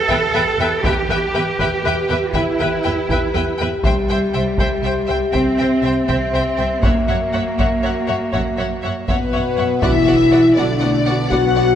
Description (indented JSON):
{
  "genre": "cinematic, epic orchestral film score",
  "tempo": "80 BPM (dotted quarters)",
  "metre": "12/8",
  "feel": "straight",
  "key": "unclear",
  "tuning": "A4 = 440 Hz",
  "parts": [
    { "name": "dark French horn section", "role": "sustained chords", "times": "0.0-11.8 s", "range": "B3 to E5", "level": "-20 LUFS", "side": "left 2 dB", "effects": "none" },
    { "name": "rich symphonic cello section", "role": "bass", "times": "0.0-11.8 s", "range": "D3 to A4", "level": "-21 LUFS", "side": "right 2 dB", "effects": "none" },
    { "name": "warm symphonic violin section", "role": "melody", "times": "0.1-11.8 s", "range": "B4 to G5", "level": "-26 LUFS", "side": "left 5 dB", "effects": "none" },
    { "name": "warm symphonic violin section", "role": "second line", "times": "0.1-11.6 s", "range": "D5 to F#5", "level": "-28 LUFS", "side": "left 2 dB", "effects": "none" },
    { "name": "rich symphonic viola section", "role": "accompaniment", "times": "0.1-11.7 s", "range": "B3 to C#5", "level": "-26 LUFS", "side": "equal", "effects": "none" },
    { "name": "warm symphonic double bass section", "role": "bass", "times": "0.1-11.8 s", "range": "B1 to F#2", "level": "-24 LUFS", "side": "right 3 dB", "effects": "none" },
    { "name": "taiko ensemble", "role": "drums", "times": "0.1-11.8 s", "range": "none", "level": "-23 LUFS", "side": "equal", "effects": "none" },
    { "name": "clear trombone section", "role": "sustained chords", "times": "9.1-11.8 s", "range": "B2 to F#3", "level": "-25 LUFS", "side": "right 2 dB", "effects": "none" },
    { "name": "impact", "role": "sound effects", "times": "9.8-11.8 s", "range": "none", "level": "-29 LUFS", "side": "equal", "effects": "none" }
  ],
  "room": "wet concert hall reverb, RT60 2.4 s",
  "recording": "none",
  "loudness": "-15 LUFS",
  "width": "side -9 dB against mid",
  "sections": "0.0-9.8 A section; 9.8-11.8 B section",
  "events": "impact 9.8-11.8",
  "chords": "0.0 Em; 3.8 C; 6.8 F#7; 9.8 Bm",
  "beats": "0.09 | 0.84 1.59 2.34 3.08 | 3.83 4.58 5.33 6.08 | 6.83 7.58 8.33 9.07 | 9.82 10.57 11.32"
}